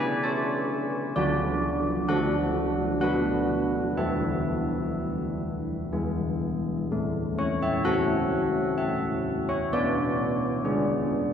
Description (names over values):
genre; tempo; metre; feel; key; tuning
classical, tune for church bells; 63 BPM; 3/4; uneven beats; A major; A4 = 439 Hz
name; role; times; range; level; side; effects
old church bells; solo; 0.0-11.3 s; D3 to A5; -24 LUFS; equal; none
room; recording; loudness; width
wet cathedral reverb, RT60 5.4 s; in a vast, echoing space; -24 LUFS; side -8 dB against mid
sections
0.0-6.9 A section; 6.9-11.3 B section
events
none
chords
0.0 A/C#; 1.1 D; 3.0 Bm/D; 4.0 Esus4; 5.9 E; 6.9 A; 9.7 G#dim/B